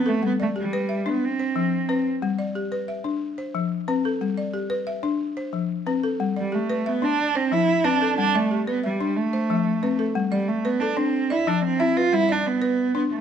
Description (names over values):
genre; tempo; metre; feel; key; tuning
west african traditional; 121 BPM (dotted quarters); 12/8; straight; G mixolydian; A4 = 442 Hz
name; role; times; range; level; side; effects
dark cello; melody; 0.0-2.1, 6.4-13.2 s; G3 to F4; -22 LUFS; right 4 dB; none
balafon; arpeggios; 0.0-13.1 s; F3 to E5; -24 LUFS; left 4 dB; none
room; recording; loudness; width
moderate recital hall reverb, RT60 1.3 s; none; -21 LUFS; side -8 dB against mid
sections
0.0-10.2 A section; 10.2-13.2 A section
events
none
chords
0.2 G; 1.2 F5; 2.2 G; 3.2 F; 4.2 G; 5.2 F; 6.2 G; 7.2 F; 8.2 G; 9.2 F; 10.2 G; 11.1 F; 12.1 G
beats
| 0.23 0.73 1.23 1.73 | 2.23 2.72 3.22 3.72 | 4.21 4.71 5.21 5.70 | 6.20 6.70 7.19 7.69 | 8.18 8.68 9.17 9.66 | 10.16 10.65 11.15 11.64 | 12.13 12.62 13.12